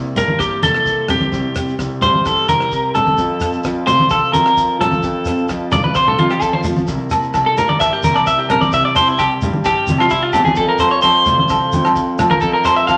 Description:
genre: highlife guitar band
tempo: 130 BPM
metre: 4/4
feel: straight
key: C mixolydian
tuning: A4 = 441 Hz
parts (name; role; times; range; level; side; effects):
- overdriven combo organ; sustained chords; 0.0-13.0 s; Bb3 to A5; -32 LUFS; equal; none
- warm grand piano; bass; 0.0-13.0 s; C2 to F3; -25 LUFS; equal; none
- nylon-string guitar; accompaniment; 0.2-12.8 s; F3 to A4; -30 LUFS; equal; none
- electric guitar at the edge of break-up; arpeggios; 0.2-13.0 s; E4 to F5; -17 LUFS; equal; spring reverb
- warm soul drum kit; drums; 0.2-13.0 s; hi-hat, kick drum, rim click; -30 LUFS; equal; none
- congas; percussion; 0.2-12.4 s; none; -24 LUFS; equal; none
- shekere; percussion; 0.2-13.0 s; none; -31 LUFS; equal; none
- agogo bells; percussion; 7.1-13.0 s; none; -21 LUFS; equal; none
room: wet studio reverb, RT60 0.8 s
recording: none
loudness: -15 LUFS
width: mono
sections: 0.0-13.0 A section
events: clean electric guitar solo 0.0-13.0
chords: 0.0 C7; 3.2 F; 6.9 C7; 8.7 C; 10.6 F

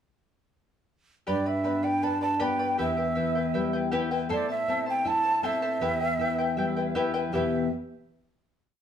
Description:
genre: andean folk, Andean ensemble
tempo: 79 BPM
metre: 2/4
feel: straight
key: E minor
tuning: A4 = 440 Hz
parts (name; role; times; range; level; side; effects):
- breathy mellow quena; melody; 1.3-7.7 s; D5 to A5; -28 LUFS; right 3 dB; none
- charango; accompaniment; 1.3-7.6 s; E4 to B5; -30 LUFS; left 2 dB; none
- nylon-string guitar; accompaniment; 1.3-7.7 s; E2 to B4; -30 LUFS; left 2 dB; none
room: wet large studio reverb, RT60 0.9 s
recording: band playing live in one room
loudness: -25 LUFS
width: side -8 dB against mid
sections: 1.3-7.3 A section; 7.3-8.8 final chord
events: none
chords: 1.3 G; 2.8 Em; 4.3 Am; 5.8 Em

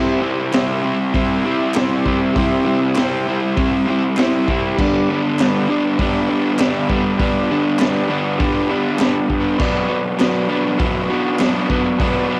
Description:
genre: garage rock duo or trio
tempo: 100 BPM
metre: 4/4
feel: straight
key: unclear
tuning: A4 = 441 Hz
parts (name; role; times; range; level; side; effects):
- overdriven combo organ; sustained chords; 0.0-12.4 s; F#4 to A5; -29 LUFS; equal; none
- crunchy overdriven guitar; riff; 0.0-12.4 s; G2 to E4; -19 LUFS; equal; none
- raw garage drum kit; drums; 0.5-12.1 s; crash cymbal, hi-hat, kick drum, snare drum; -24 LUFS; equal; cassette tape
- group handclap; percussion; 0.5-11.5 s; none; -33 LUFS; equal; none
room: little or no reverb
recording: home recording on cassette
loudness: -18 LUFS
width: mono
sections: 0.0-12.4 A section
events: transistor combo organ fill 8.7-9.6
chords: 0.0 C; 4.8 G; 9.6 Bm

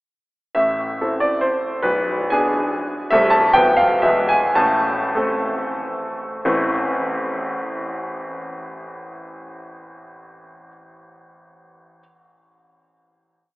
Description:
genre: classical, romantic triple-time dance for piano with dotted rhythms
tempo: 90-161 BPM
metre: 3/4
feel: rubato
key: A minor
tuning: A4 = 440 Hz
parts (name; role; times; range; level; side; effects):
- clear concert grand piano; solo; 0.5-12.0 s; B0 to A5; -18 LUFS; equal; none
room: wet cathedral reverb, RT60 5.8 s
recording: in a vast, echoing space, telephone sound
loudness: -17 LUFS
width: side -20 dB against mid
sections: 0.6-6.5 A section; 6.5-9.9 final chord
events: slowing down 2.5-6.5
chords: 0.6 Am; 1.9 G#dim/B; 3.1 Am/C; 3.5 Bdim/D; 4.0 E; 4.6 Am

